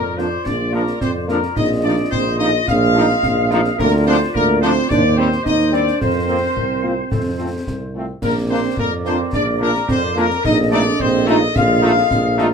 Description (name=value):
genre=military-style march for wind band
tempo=108 BPM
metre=2/4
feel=straight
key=Bb major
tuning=A4 = 440 Hz
part: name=mellow trumpet section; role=melody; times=0.0-12.5 s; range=Bb4 to F5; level=-22 LUFS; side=left 5 dB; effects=none
part: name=mellow euphonium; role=second line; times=0.0-12.5 s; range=Bb3 to F4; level=-22 LUFS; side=right 5 dB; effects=none
part: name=mellow woodwind section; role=second line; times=0.0-12.5 s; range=F4 to Eb5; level=-28 LUFS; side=equal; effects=none
part: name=small flute group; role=second line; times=0.0-12.5 s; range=Bb4 to F5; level=-23 LUFS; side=left 3 dB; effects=none
part: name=mellow tuba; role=bass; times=0.0-12.5 s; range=Bb1 to F2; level=-20 LUFS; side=right 2 dB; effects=none
part: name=mellow French horn section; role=accompaniment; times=0.2-12.5 s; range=G3 to G4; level=-24 LUFS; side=equal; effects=none
part: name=warm trombone section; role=sustained chords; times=0.2-12.5 s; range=F3 to Eb4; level=-24 LUFS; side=equal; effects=none
part: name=concert snare drum, concert bass drum and clash cymbals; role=drums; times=0.2-12.5 s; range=none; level=-26 LUFS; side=left 1 dB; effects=none
room=moderate small room reverb, RT60 0.5 s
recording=minimal, uncompressed stereo recording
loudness=-15 LUFS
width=side -6 dB against mid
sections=0.0-12.5 A section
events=none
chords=0.0 Bb; 1.6 F7/Bb; 3.8 Bb/D; 4.9 Cm/Eb; 6.0 Fsus4; 7.1 F; 8.2 Bb; 10.4 F7/Bb